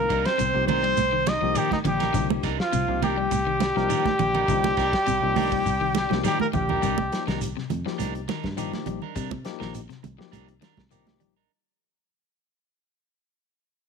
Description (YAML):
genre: afrobeat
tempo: 103 BPM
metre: 4/4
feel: straight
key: C minor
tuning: A4 = 438 Hz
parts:
  - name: warm trumpet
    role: melody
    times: 0.0-7.2 s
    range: Eb4 to Eb5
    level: -24 LUFS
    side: left 1 dB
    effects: none
  - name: melodica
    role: second line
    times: 0.0-7.2 s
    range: Eb5 to Eb6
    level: -37 LUFS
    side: left 10 dB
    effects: none
  - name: warm trombone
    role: second line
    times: 0.0-7.2 s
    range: Eb3 to Eb4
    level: -34 LUFS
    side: right 11 dB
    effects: none
  - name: barky tine electric piano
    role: accompaniment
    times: 0.0-11.3 s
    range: F3 to Bb4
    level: -33 LUFS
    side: left 15 dB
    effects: auto-pan
  - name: electric guitar at the edge of break-up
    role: arpeggios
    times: 0.0-11.4 s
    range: C3 to G3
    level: -32 LUFS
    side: left 16 dB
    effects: none
  - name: fingered electric bass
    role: bass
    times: 0.0-11.5 s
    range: Bb1 to C3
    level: -31 LUFS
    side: equal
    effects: none
  - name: electric guitar at the edge of break-up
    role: stabs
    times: 0.1-11.5 s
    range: G3 to Bb4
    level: -35 LUFS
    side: right 14 dB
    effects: none
  - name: warm soul drum kit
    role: drums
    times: 0.1-11.4 s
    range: hi-hat, kick drum, ride cymbal, snare drum, toms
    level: -33 LUFS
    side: left 1 dB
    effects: none
  - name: shekere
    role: percussion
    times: 0.1-11.4 s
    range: none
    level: -36 LUFS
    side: right 8 dB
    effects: none
  - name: congas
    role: percussion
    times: 0.7-11.4 s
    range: none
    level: -29 LUFS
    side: right 14 dB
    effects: none
room: light reverb, studio ambience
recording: 1960s-style stereo with parts hard left and right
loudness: -22 LUFS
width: side -6 dB against mid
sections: 0.0-6.8 A section; 6.8-11.5 B section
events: drum fill 5.7-6.8; fade-out 6.8-11.5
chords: 0.0 Cm9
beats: 0.39 0.98 1.56 | 2.15 2.73 3.32 3.90 | 4.49 5.07 5.66 6.24 | 6.83 7.41 8.00 8.58 | 9.17 9.75 10.34 10.92